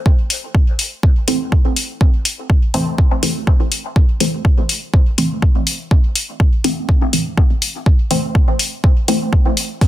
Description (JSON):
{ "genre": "dub techno", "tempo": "123 BPM", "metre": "4/4", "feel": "straight", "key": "A minor", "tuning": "A4 = 440 Hz", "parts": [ { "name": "electronic kick drum", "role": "drums", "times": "0.1-9.9 s", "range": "none", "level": "-12 LUFS", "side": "equal", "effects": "none" }, { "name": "electronic hi-hat", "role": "drums", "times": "0.3-9.9 s", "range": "none", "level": "-19 LUFS", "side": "left 3 dB", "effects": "overdrive" }, { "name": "filtered dub chord stab", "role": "stabs", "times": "1.3-9.2 s", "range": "E3 to C4", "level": "-21 LUFS", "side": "equal", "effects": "phaser, sidechain pumping, dub echo" } ], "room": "light reverb", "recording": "dense, heavily limited modern master", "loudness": "-13 LUFS", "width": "side -14 dB against mid", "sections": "0.0-9.9 A section", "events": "none", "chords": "0.0 Am", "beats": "0.06 0.55 | 1.03 1.52 2.01 2.50 | 2.98 3.47 3.96 4.45 | 4.94 5.42 5.91 6.40 | 6.89 7.38 7.86 8.35 | 8.84 9.33 9.81" }